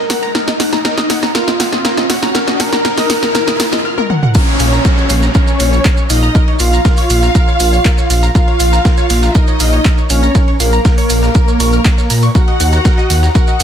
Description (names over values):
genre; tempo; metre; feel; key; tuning
melodic techno; 120 BPM; 4/4; straight; Bb minor; A4 = 440 Hz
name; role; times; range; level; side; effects
wide unison lead; melody; 0.0-13.6 s; Bb3 to Bb4; -18 LUFS; equal; vintage 12-bit sampler grit, sidechain pumping, ping-pong delay
wide unison pluck; arpeggios; 0.0-13.6 s; Bb4 to F6; -21 LUFS; equal; phaser, sidechain pumping, ping-pong delay
riser and downlifter; sound effects; 0.0-8.3 s; none; -22 LUFS; equal; none
dusty soul sampler-style drum kit; drums; 0.1-13.6 s; hi-hat, ride cymbal, snare drum; -30 LUFS; right 3 dB; none
punchy analog drum machine; drums; 0.1-13.6 s; crash cymbal, handclaps, hi-hat, snare drum, toms; -17 LUFS; equal; sidechain pumping on hats, sidechain pumping on toms, sidechain pumping on cymbals
dark symphonic violin section; second line; 4.3-13.6 s; Bb4 to Gb5; -21 LUFS; left 1 dB; sidechain pumping, ping-pong delay
electronic kick drum; drums; 4.3-13.5 s; none; -11 LUFS; equal; none
maracas; percussion; 4.3-13.6 s; none; -25 LUFS; right 6 dB; none
dark detuned saw bass; bass; 4.6-13.6 s; Bb1 to Bb2; -12 LUFS; equal; sidechain pumping
room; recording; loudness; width
light reverb; dense, heavily limited modern master; -10 LUFS; side -8 dB against mid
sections
0.0-4.4 A section; 4.4-13.6 B section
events
build-up 0.0-4.4; drum fill 0.0-3.9, 4.0-4.4; riser 0.0-3.9; filter sweep on analog synth lead 0.0-4.4; drop 4.4-13.6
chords
0.0 Ebm; 4.4 Bbm; 12.4 Ebm